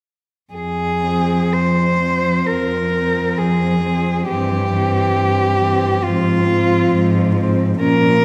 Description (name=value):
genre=classical, lyrical piece for cello ensemble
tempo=59-70 BPM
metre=4/4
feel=rubato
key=F minor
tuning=A4 = 440 Hz
part: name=rich cello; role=melody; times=0.5-8.2 s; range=F4 to C5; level=-21 LUFS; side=equal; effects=none
part: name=warm cello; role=bass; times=0.5-8.2 s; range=F2 to Bb2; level=-23 LUFS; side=equal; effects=none
part: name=dark cello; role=second line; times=1.0-8.2 s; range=C4 to Db4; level=-26 LUFS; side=equal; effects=none
part: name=warm cello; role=accompaniment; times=1.0-8.2 s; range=E3 to F3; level=-23 LUFS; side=equal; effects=none
room=wet concert hall reverb, RT60 2.0 s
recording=recorded in a church or concert hall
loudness=-17 LUFS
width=mono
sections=0.5-8.2 A section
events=none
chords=0.5 Fm; 4.3 C/G; 6.0 Fm/Ab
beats=| 0.53 1.54 2.47 3.39 | 4.28 5.17 6.05 6.93 | 7.80